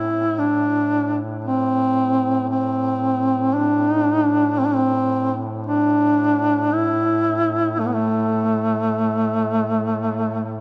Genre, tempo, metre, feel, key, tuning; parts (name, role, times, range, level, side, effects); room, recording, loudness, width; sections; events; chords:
caucasian folk, Caucasian lament; 56 BPM; 3/4; rubato; A minor; A4 = 440 Hz
warm duduk; melody; 0.0-10.5 s; A3 to E4; -20 LUFS; equal; tape echo
warm duduk; drone; 0.0-10.6 s; A2; -30 LUFS; equal
moderate recital hall reverb, RT60 1.7 s; -20 LUFS; mono
0.0-10.6 A section